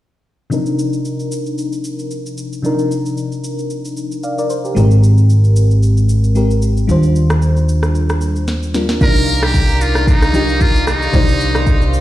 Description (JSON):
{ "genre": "amapiano", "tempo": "113 BPM", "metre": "4/4", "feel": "swing 55% on 16ths", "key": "C minor", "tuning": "A4 = 440 Hz", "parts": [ { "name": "bell-like FM electric piano", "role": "accompaniment", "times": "0.5-12.0 s", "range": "C3 to F5", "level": "-19 LUFS", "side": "left 2 dB", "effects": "chorus, tremolo, low-pass filter" }, { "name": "afro-pop drum kit", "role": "drums", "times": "0.5-12.0 s", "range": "kick drum, rim click, shaker, snare drum", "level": "-19 LUFS", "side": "equal", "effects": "vintage 12-bit sampler grit" }, { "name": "upright bass", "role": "bass", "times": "4.8-12.0 s", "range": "Ab1 to Eb2", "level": "-13 LUFS", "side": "equal", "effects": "none" }, { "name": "trumpet with metal mute", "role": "melody", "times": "9.0-11.9 s", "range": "Eb4 to Bb4", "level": "-18 LUFS", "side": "right 1 dB", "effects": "digital delay" }, { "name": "warm studio string section", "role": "sustained chords", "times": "9.0-12.0 s", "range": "Eb3 to C6", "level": "-25 LUFS", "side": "left 1 dB", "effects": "sidechain pumping" } ], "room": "studio reverb", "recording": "played on a big sound system in a bare room, stone room reverb", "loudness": "-12 LUFS", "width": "side -14 dB against mid", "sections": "0.5-9.0 A section; 9.0-12.0 B section", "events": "filter sweep on FM electric piano 0.5-9.0; drum fill 8.5-9.0", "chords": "0.5 Cm11; 4.8 Abmaj9; 6.9 Ebmaj13; 9.0 Cm11" }